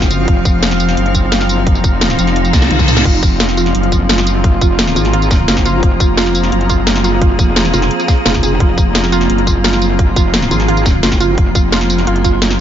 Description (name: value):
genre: dark technical drum and bass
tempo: 173 BPM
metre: 4/4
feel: straight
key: F phrygian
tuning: A4 = 441 Hz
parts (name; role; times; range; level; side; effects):
- swarming drone; sustained chords; 0.0-12.6 s; F3 to Bb4; -19 LUFS; equal; built-in reverb, sidechain pumping
- metallic wobble bass; bass; 0.0-0.3, 5.0-11.4 s; F1 to Ab1; -15 LUFS; equal; chorus, tube saturation
- drum and bass drum kit; drums; 0.0-12.6 s; crash cymbal, hi-hat, snare drum, tambourine, toms; -16 LUFS; equal; none
- electronic kick drum; drums; 0.0-12.3 s; none; -13 LUFS; equal; none
- airy breathy pad; texture; 0.0-12.6 s; C4 to F6; -20 LUFS; equal; chorus, sidechain pumping
- metallic wobble bass; bass; 0.3-12.6 s; F1 to C2; -16 LUFS; equal; chorus, overdrive, sidechain pumping
- reverse cymbal; sound effects; 2.5-3.1 s; none; -20 LUFS; left 3 dB; none
- warbly dusty pluck; arpeggios; 3.1-12.3 s; F4 to F5; -20 LUFS; right 4 dB; chorus, sidechain pumping, ping-pong delay
room: digital ambience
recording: nothing above 7.5 kHz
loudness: -10 LUFS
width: side -10 dB against mid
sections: 0.0-12.6 A section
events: reverse cymbal 2.5-3.1; drum fill 2.5-3.1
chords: 0.0 F5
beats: | 0.28 0.63 0.97 1.32 | 1.67 2.01 2.36 2.71 | 3.05 3.40 3.75 4.09 | 4.44 4.79 5.13 5.48 | 5.83 6.17 6.52 6.87 | 7.21 7.56 7.91 8.26 | 8.60 8.95 9.30 9.64 | 9.99 10.34 10.68 11.03 | 11.38 11.72 12.07 12.42